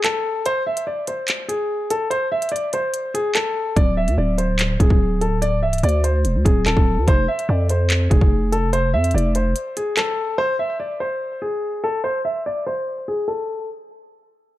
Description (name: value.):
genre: hip hop, drill.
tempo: 145 BPM.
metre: 4/4.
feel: half-time.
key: unclear.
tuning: A4 = 440 Hz.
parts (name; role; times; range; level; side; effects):
dark concert grand piano; melody; 0.0-13.7 s; G#4 to E5; -22 LUFS; left 1 dB; low-pass filter.
drill drum kit; drums; 0.0-10.1 s; handclaps, hi-hat, kick drum; -19 LUFS; equal; none.
growling 808-style bass; bass; 3.8-9.5 s; C1 to F2; -19 LUFS; equal; none.
room: little or no reverb.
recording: dark, warm production.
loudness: -18 LUFS.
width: side -15 dB against mid.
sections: 0.0-10.4 A section; 10.4-13.7 B section.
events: break 0.0-3.8, 9.6-10.4; filter sweep on grand piano 10.4-13.7.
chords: 0.0 N.C.; 3.8 D5; 7.1 F5; 10.4 N.C..